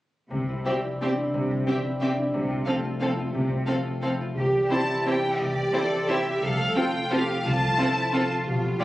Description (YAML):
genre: classical, orchestral ballroom waltz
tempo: 177 BPM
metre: 3/4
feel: uneven beats, rubato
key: C major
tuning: A4 = 440 Hz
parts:
  - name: concert harp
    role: arpeggios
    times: 0.3-8.8 s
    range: B2 to C5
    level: -29 LUFS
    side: left 2 dB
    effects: none
  - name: rich studio cello section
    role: bass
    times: 0.3-8.8 s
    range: C3 to A4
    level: -30 LUFS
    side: right 1 dB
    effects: none
  - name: warm studio double bass section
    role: bass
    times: 0.3-8.7 s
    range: B1 to C2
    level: -32 LUFS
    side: right 1 dB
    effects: none
  - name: rich studio violin section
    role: melody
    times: 0.7-8.8 s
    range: D5 to A5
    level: -29 LUFS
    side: left 1 dB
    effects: none
  - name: rich studio violin section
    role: second line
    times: 0.7-8.8 s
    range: G4 to D5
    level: -34 LUFS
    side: equal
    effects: none
  - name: rich studio viola section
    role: accompaniment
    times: 0.7-8.8 s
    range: G3 to F4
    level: -28 LUFS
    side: right 1 dB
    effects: none
  - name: dark French horn section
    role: sustained chords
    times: 0.7-8.8 s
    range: E3 to A4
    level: -31 LUFS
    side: equal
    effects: none
room: wet recital hall reverb, RT60 1.7 s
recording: recorded on a phone in the room, club reverb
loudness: -23 LUFS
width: side -16 dB against mid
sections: 0.3-4.4 A section; 4.4-8.8 B section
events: none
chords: 0.3 C; 2.3 F/C; 4.4 C; 6.4 F/C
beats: | 0.31 0.66 1.02 | 1.35 1.68 2.02 | 2.34 2.67 3.02 | 3.34 3.67 4.03 | 4.38 4.71 5.07 | 5.40 5.74 6.09 | 6.42 6.76 7.12 | 7.46 7.79 8.14 | 8.47 8.81